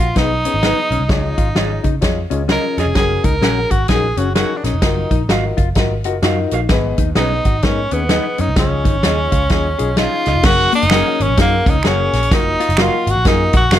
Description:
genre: uptempo 1960s-style soul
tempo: 128 BPM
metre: 4/4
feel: swing 62% on 8ths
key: F# major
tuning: A4 = 442 Hz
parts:
  - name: clear tenor saxophone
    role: melody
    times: 0.0-13.8 s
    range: A#3 to A#4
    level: -18 LUFS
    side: right 1 dB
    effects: slapback echo
  - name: mellow electric guitar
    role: riff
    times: 0.0-13.7 s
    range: A#3 to G#4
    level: -24 LUFS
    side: left 12 dB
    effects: none
  - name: vintage muted picked electric bass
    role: bass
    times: 0.0-13.8 s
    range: E#1 to C#3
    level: -20 LUFS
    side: right 1 dB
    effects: none
  - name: dark upright piano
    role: accompaniment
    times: 0.2-13.8 s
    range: G#2 to C#5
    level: -24 LUFS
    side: left 5 dB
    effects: none
  - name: natural country drum kit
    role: drums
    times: 0.2-13.8 s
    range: crash cymbal, hi-hat, kick drum, snare drum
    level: -17 LUFS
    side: equal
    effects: none
  - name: electric guitar through a small old amp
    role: stabs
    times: 0.6-13.8 s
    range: E#4 to F#5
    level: -24 LUFS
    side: right 7 dB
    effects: slapback echo
  - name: finger snaps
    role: percussion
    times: 10.9-13.8 s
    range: none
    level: -22 LUFS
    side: right 7 dB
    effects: none
room: small room ambience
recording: dark, warm production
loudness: -13 LUFS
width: side -11 dB against mid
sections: 0.0-10.4 A section; 10.4-13.8 B section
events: none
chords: 0.0 G#m; 1.1 C#add9; 3.0 F#add9; 4.8 D#madd9/F#; 6.7 G#m; 8.6 C#add9; 10.4 F#add9; 12.3 D#madd9/F#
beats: 0.15 0.62 | 1.09 1.55 2.02 2.49 | 2.95 3.42 3.89 4.36 | 4.82 5.29 5.76 6.22 | 6.69 7.16 7.63 8.10 | 8.57 9.04 9.51 9.98 | 10.45 10.91 11.38 11.85 | 12.32 12.79 13.26 13.73

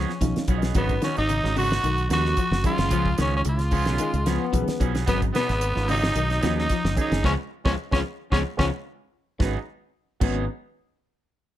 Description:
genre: afrobeat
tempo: 111 BPM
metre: 4/4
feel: swing 54% on 16ths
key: G# dorian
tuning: A4 = 440 Hz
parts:
  - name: raspy tenor saxophone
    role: melody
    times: 0.0-8.7 s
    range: B3 to F#4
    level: -27 LUFS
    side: equal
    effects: none
  - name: electric guitar at the edge of break-up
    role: arpeggios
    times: 0.0-10.4 s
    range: G#2 to G#3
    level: -31 LUFS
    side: left 8 dB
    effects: none
  - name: electric guitar at the edge of break-up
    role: stabs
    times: 0.0-10.4 s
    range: E#3 to G#4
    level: -34 LUFS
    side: right 10 dB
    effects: none
  - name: modern bright fingered electric bass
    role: bass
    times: 0.0-10.5 s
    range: F#1 to D#2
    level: -26 LUFS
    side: equal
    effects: none
  - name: damped 70s drum kit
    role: drums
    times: 0.1-10.3 s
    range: crash cymbal, hi-hat, kick drum, snare drum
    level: -26 LUFS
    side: equal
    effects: none
  - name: overdriven reed electric piano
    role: accompaniment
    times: 0.2-10.5 s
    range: D#3 to E#5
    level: -32 LUFS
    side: right 5 dB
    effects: fast tremolo
  - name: clear trumpet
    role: second line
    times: 0.8-8.7 s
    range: B3 to F#4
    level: -34 LUFS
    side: right 3 dB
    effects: none
  - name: bright trombone section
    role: second line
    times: 4.0-10.5 s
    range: G#3 to C#4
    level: -31 LUFS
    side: left 6 dB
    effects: none
room: little or no reverb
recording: none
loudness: -21 LUFS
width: side -13 dB against mid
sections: 0.0-9.4 A section; 9.4-11.6 B section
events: reed electric piano fill 0.0-0.8; band accent 7.2-9.4; drum fill 9.1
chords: 0.0 C#7; 0.8 G#m7; 2.9 C#7; 5.1 G#m7; 7.2 C#7; 9.4 G#m7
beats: 0.21 | 0.75 1.29 1.83 2.38 | 2.92 3.46 4.00 4.54 | 5.08 5.62 6.16 6.70 | 7.24 7.78 8.32 8.86 | 9.40 9.94

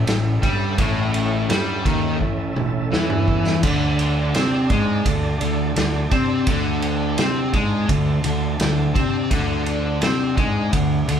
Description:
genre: blues rock power trio and southern rock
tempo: 84 BPM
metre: 4/4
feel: straight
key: unclear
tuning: A4 = 440 Hz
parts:
  - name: overdriven tonewheel organ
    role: sustained chords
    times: 0.0-11.2 s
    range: C#4 to A5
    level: -31 LUFS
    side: right 3 dB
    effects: chorus vibrato, fast rotary speaker
  - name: fuzz fingered electric bass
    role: bass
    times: 0.0-11.2 s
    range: A1 to C3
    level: -26 LUFS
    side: equal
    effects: overdrive
  - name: fuzz guitar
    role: riff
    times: 0.1-11.2 s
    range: A2 to C4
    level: -21 LUFS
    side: left 1 dB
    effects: distortion
  - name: vintage drum kit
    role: drums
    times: 0.1-11.2 s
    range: crash cymbal, kick drum, ride cymbal, snare drum, toms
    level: -23 LUFS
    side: equal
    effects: none
room: moderate large studio reverb, RT60 1.3 s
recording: band playing live in one room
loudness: -18 LUFS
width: side -8 dB against mid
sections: 0.0-11.2 A section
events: drum fill 2.2-3.6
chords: 0.0 A; 3.6 D5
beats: 0.08 | 0.79 1.50 2.21 2.92 | 3.63 4.34 5.05 5.76 | 6.47 7.18 7.89 8.60 | 9.31 10.02 10.73

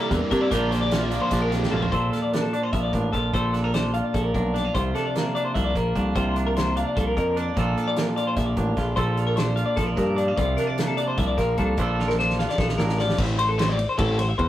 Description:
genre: math rock and midwest emo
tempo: 298 BPM (eighths)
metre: 7/8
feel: straight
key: Bb lydian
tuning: A4 = 439 Hz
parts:
  - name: twangy electric guitar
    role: accompaniment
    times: 0.0-13.2 s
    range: F2 to A4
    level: -27 LUFS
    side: right 2 dB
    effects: none
  - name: twelve-string electric guitar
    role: arpeggios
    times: 0.0-14.5 s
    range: G4 to F5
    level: -26 LUFS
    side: left 2 dB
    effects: none
  - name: cranked stack guitar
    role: riff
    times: 0.0-1.9, 13.2-14.4 s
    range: Bb2 to E4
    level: -31 LUFS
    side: equal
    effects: overdrive
  - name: picked electric bass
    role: bass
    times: 0.1-14.5 s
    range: A1 to C3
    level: -25 LUFS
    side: equal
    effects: none
  - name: loose indie drum kit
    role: drums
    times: 0.1-14.5 s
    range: crash cymbal, hi-hat, kick drum, ride cymbal, snare drum, toms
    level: -29 LUFS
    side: equal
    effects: none
room: moderate small room reverb, RT60 0.5 s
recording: rough rehearsal-room recording, warm saturation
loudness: -21 LUFS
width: side -13 dB against mid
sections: 0.0-1.9 A section; 1.9-13.2 B section; 13.2-14.5 C section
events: drum fill 1.6-1.9, 12.0-13.2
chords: 0.0 C7; 0.5 Bb6; 1.9 Bbmaj9; 4.7 C9sus4; 7.6 Bbmaj9; 10.4 C9sus4; 11.8 Bbmaj9; 13.2 Am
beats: 0.12 0.32 | 0.52 0.72 0.92 1.12 1.32 1.52 1.72 | 1.92 2.12 2.32 2.52 2.73 2.93 3.13 | 3.33 3.53 3.73 3.94 4.14 4.34 4.54 | 4.74 4.95 5.15 5.35 5.55 5.75 5.95 | 6.15 6.36 6.56 6.76 6.96 7.16 7.36 | 7.56 7.76 7.96 8.16 8.37 8.57 8.77 | 8.97 9.17 9.37 9.57 9.77 9.98 10.18 | 10.38 10.58 10.78 10.98 11.18 11.38 11.59 | 11.79 11.99 12.19 12.39 12.59 12.79 12.99 | 13.19 13.39 13.59 13.79 13.99 14.19 14.39

